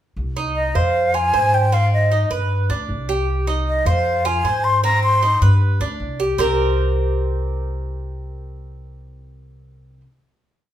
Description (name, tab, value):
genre	latin, Cuban son and guajira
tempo	154 BPM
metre	4/4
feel	straight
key	C minor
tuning	A4 = 439 Hz
part	upright bass	bass	0.2-10.0 s	C2 to Ab2	-20 LUFS	equal	none
part	Cuban tres	arpeggios	0.4-10.0 s	C4 to C5	-23 LUFS	right 2 dB	none
part	breathy mellow silver concert flute	melody	0.6-5.4 s	Eb5 to C6	-18 LUFS	left 1 dB	none
room	moderate large studio reverb, RT60 0.9 s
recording	band playing live in one room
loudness	-16 LUFS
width	side -11 dB against mid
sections	0.2-6.4 montuno (vamp); 6.4-9.5 final chord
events	none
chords	0.2 Cm; 0.9 Fm; 1.7 Ab; 2.5 G; 3.3 Cm; 4.1 Fm; 4.8 Ab; 5.6 G; 6.4 C5